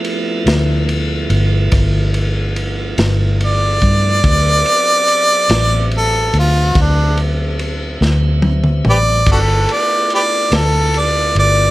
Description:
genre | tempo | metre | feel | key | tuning
slow blues | 48 BPM (dotted quarters) | 12/8 | straight | unclear | A4 = 443 Hz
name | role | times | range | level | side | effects
tonewheel organ | sustained chords | 0.0-11.7 s | F3 to E5 | -24 LUFS | right 1 dB | slow rotary speaker
crunchy breakbeat drum kit | drums | 0.0-11.6 s | crash cymbal, kick drum, ride cymbal, snare drum, toms | -20 LUFS | equal | none
vintage muted fingered electric bass | bass | 0.5-11.7 s | G1 to G2 | -15 LUFS | equal | none
warm harmonica | melody | 3.4-11.7 s | D4 to D5 | -14 LUFS | equal | none
room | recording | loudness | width
little or no reverb | none | -12 LUFS | side -17 dB against mid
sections
0.0-11.7 A section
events
harmonica solo 0.0-11.7; drum fill 8.0-9.3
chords
0.0 G13; 4.2 D13; 9.3 G13

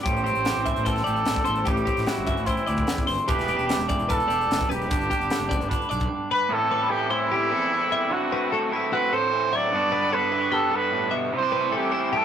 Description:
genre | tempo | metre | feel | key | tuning
math rock and midwest emo | 149 BPM | 4/4 | straight | unclear | A4 = 440 Hz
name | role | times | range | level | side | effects
warm trumpet | melody | 0.0-12.2 s | E4 to D5 | -25 LUFS | right 2 dB | none
twangy electric guitar | accompaniment | 0.0-12.2 s | E2 to G4 | -29 LUFS | right 4 dB | none
twelve-string electric guitar | arpeggios | 0.0-12.2 s | F#4 to E5 | -28 LUFS | left 5 dB | none
fuzz fingered electric bass | bass | 0.1-6.1 s | E1 to E2 | -30 LUFS | equal | overdrive
crisp fusion drum kit | drums | 0.1-6.1 s | hi-hat, kick drum, snare drum | -28 LUFS | equal | none
raw garage guitar | riff | 6.5-12.2 s | G2 to F#4 | -29 LUFS | equal | overdrive
room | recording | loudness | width
moderate small room reverb, RT60 0.5 s | rough rehearsal-room recording, tube saturation | -21 LUFS | side -8 dB against mid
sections
0.0-6.5 A section; 6.5-12.2 B section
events
none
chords
0.1 Am7; 3.3 Em7; 4.9 G; 6.5 Am9; 8.1 D13; 9.7 Gmaj9; 11.3 C69

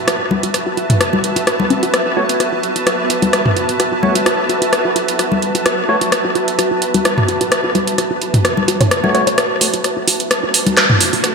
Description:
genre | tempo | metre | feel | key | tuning
minimal techno | 129 BPM | 4/4 | swing 54% on 16ths | F# minor | A4 = 441 Hz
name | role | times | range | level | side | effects
granular cloud pad | texture | 0.0-11.3 s | F#4 to A5 | -19 LUFS | right 1 dB | built-in reverb
hollow square pluck | riff | 0.1-11.2 s | C#4 to C#5 | -22 LUFS | equal | chorus, vintage 12-bit sampler grit, ping-pong delay
booming analog drum machine | drums | 0.1-11.3 s | handclaps, hi-hat | -18 LUFS | right 4 dB | gated reverb
garage drum kit | percussion | 0.1-11.3 s | congas, rim click, toms | -17 LUFS | left 2 dB | gated reverb, ping-pong delay
percussive organ stab | stabs | 2.2-6.0, 9.0-9.7 s | A3 to C#5 | -21 LUFS | left 1 dB | chorus, ping-pong delay
riser | sound effects | 10.2-11.3 s | none | -27 LUFS | right 2 dB | none
swarming drone | texture | 10.1-11.3 s | A3 to A4 | -29 LUFS | right 3 dB | built-in reverb
room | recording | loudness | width
wet lush hall reverb, RT60 1.9 s, digital ambience | bright 1980s-style digital production | -13 LUFS | side -4 dB against mid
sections
0.0-9.4 A section; 9.4-11.3 B section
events
build-up 9.4-11.3; riser 10.2-11.3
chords
0.0 F#m

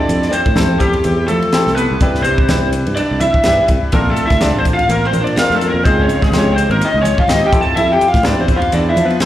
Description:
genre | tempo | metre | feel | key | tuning
electric jazz fusion | 125 BPM | 4/4 | swing 56% on 16ths | unclear | A4 = 444 Hz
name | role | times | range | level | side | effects
lead guitar through a small cranked amp | melody | 0.0-9.3 s | G4 to A5 | -16 LUFS | equal | overdrive, slapback echo
vintage hollow-body jazz guitar | second line | 0.0-9.3 s | G3 to A4 | -22 LUFS | equal | slapback echo
bright concert grand piano | accompaniment | 0.0-9.3 s | C4 to B4 | -22 LUFS | left 2 dB | slapback echo
sustaining fretless electric bass | bass | 0.1-9.2 s | Ab1 to F3 | -18 LUFS | equal | none
crisp fusion drum kit | drums | 0.1-9.3 s | hi-hat, kick drum, ride cymbal, snare drum | -19 LUFS | equal | none
congas | percussion | 0.1-9.3 s | none | -23 LUFS | right 1 dB | slapback echo
room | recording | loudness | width
light reverb, small room ambience | live gig heard through the venue's PA, club reverb | -12 LUFS | side -13 dB against mid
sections
0.0-9.3 A section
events
none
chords
0.0 Fmaj9; 2.0 Cmaj9; 3.9 Bbmaj9; 5.9 Dbmaj9; 7.5 Fmaj9

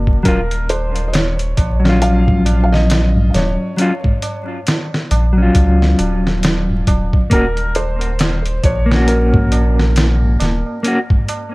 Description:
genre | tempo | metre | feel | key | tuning
trip hop | 68 BPM | 4/4 | swing 59% on 16ths | Eb dorian | A4 = 440 Hz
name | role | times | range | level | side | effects
mellow electric guitar | accompaniment | 0.0-11.0 s | Gb3 to Gb4 | -18 LUFS | left 1 dB | tremolo, vintage 12-bit sampler grit, tape echo
soft dub sub bass | bass | 0.0-10.6 s | Eb1 to Db2 | -16 LUFS | equal | tube saturation
trip hop sampler-style drum kit | drums | 0.1-11.5 s | hi-hat, kick drum, snare drum | -17 LUFS | equal | studio ambience
tabla | percussion | 0.1-11.5 s | none | -26 LUFS | right 2 dB | tape echo
felt-muted upright piano | melody | 0.2-11.5 s | Bb4 to F5 | -23 LUFS | equal | vintage 12-bit sampler grit, tape echo
room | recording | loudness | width
little or no reverb | echo-heavy mix, vinyl crackle | -13 LUFS | side -22 dB against mid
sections
0.0-11.5 A section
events
none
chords
0.3 Ebm7; 7.3 Gb/Eb

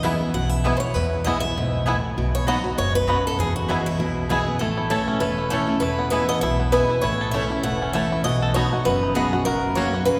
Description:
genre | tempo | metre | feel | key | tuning
bluegrass | 197 BPM | 4/4 | swing 55% on 8ths | E major | A4 = 440 Hz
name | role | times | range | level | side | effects
picked swing-style acoustic guitar | melody | 0.0-10.2 s | E4 to F#5 | -28 LUFS | equal | none
picked steel-string acoustic guitar | accompaniment | 0.0-10.2 s | E2 to F#4 | -28 LUFS | equal | none
bluegrass banjo | arpeggios | 0.0-10.2 s | A3 to A4 | -30 LUFS | equal | none
mandolin | stabs | 0.0-9.9 s | A3 to B5 | -32 LUFS | equal | none
upright bass | bass | 0.0-10.2 s | E1 to E2 | -29 LUFS | equal | none
room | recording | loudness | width
wet cathedral reverb, RT60 5.1 s | recorded in a church or concert hall | -22 LUFS | mono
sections
0.0-4.6 A section; 4.6-10.2 B section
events
none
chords
0.0 E; 2.2 B; 3.4 E; 4.6 A; 5.8 E; 7.0 A; 8.3 B; 9.5 F#

